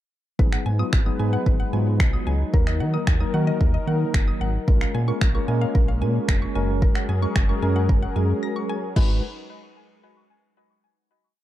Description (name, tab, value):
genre	dance-pop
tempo	112 BPM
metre	4/4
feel	straight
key	G# dorian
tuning	A4 = 445 Hz
part	mellow tine electric piano	accompaniment	0.4-9.2 s	F#3 to B4	-28 LUFS	equal	medium stereo tremolo, sidechain pumping
part	warm analog pad	sustained chords	0.7-9.2 s	D#3 to B4	-31 LUFS	left 1 dB	chorus, sidechain pumping
part	mallet-like synth pluck	arpeggios	0.4-9.2 s	F#4 to B6	-35 LUFS	left 3 dB	chorus, sidechain pumping, tape echo
part	round analog bass	bass	0.4-9.2 s	E#1 to D#3	-23 LUFS	equal	sidechain pumping
part	deep house drum kit	drums	0.4-9.1 s	crash cymbal, finger snaps, kick drum	-21 LUFS	equal	none
room	little or no reverb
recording	dark, warm production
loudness	-19 LUFS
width	side -13 dB against mid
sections	0.4-9.0 verse; 9.0-11.1 final chord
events	break 8.4-9.0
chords	0.4 G#m7; 2.5 D#m; 4.7 A#m7; 6.6 F#add9; 9.0 G#m7